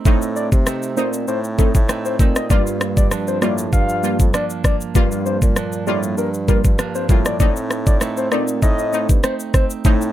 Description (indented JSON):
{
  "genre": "dancehall",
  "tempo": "98 BPM",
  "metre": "4/4",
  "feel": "straight",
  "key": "G minor",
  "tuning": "A4 = 441 Hz",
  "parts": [
    { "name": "clean electric guitar", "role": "arpeggios", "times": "0.0-10.1 s", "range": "G2 to Eb4", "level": "-26 LUFS", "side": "right 6 dB", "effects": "ping-pong delay" },
    { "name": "synth brass stab", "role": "accompaniment", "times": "0.1-10.1 s", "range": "G3 to F4", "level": "-23 LUFS", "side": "equal", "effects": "chorus, sidechain pumping" },
    { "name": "mellow bassoon", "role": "bass", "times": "0.1-10.1 s", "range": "F2 to C3", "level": "-26 LUFS", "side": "equal", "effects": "none" },
    { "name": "afro-pop drum kit", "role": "drums", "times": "0.1-10.1 s", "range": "kick drum, rim click, shaker", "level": "-16 LUFS", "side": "equal", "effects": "none" },
    { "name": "soft octave-layered synth lead", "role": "melody", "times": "0.4-9.7 s", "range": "A4 to F5", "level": "-24 LUFS", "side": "left 2 dB", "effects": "chorus, ping-pong delay" }
  ],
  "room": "little or no reverb",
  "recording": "none",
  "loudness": "-16 LUFS",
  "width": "side -13 dB against mid",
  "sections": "0.0-10.1 A section",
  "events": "none",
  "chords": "0.0 Adim; 2.5 Gm7; 7.4 Adim"
}